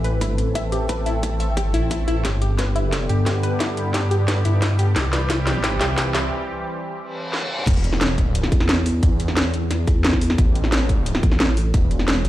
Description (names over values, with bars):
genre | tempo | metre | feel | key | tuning
dark technical drum and bass | 177 BPM | 4/4 | straight | unclear | A4 = 443 Hz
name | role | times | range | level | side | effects
sweeping resonant pad | sustained chords | 0.0-7.6 s | D3 to A4 | -27 LUFS | equal | chorus, sidechain pumping
wide unison pluck | arpeggios | 0.0-6.2 s | E4 to E5 | -28 LUFS | left 1 dB | sidechain pumping, dub echo
wide detuned saw bass | bass | 0.0-12.2 s | E1 to G2 | -21 LUFS | equal | chorus, overdrive
drum and bass drum kit | drums | 0.0-12.3 s | crash cymbal, hi-hat, snare drum, toms | -23 LUFS | equal | high-pass filter on hats, high-pass filter on snare, high-pass filter on toms, high-pass filter on cymbals, high-pass filter on room
electronic kick drum | drums | 0.2-11.8 s | none | -20 LUFS | equal | high-pass filter on kick
reverse cymbal | sound effects | 7.1-7.7 s | none | -28 LUFS | left 1 dB | none
vowel-sweep wobble bass | bass | 8.5-12.3 s | G1 to E2 | -20 LUFS | equal | chorus
room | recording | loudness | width
light reverb | played on a big sound system in a bare room, large studio reverb | -18 LUFS | side -14 dB against mid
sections
0.0-7.7 A section; 7.7-12.3 B section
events
build-up 0.0-7.7; drum fill 2.2-6.3, 7.3-7.7; break 6.3-7.7; reverse cymbal 7.1-7.7; drop 7.7-12.3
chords
0.0 Am; 2.2 G; 5.0 C; 7.7 N.C.; 10.4 A5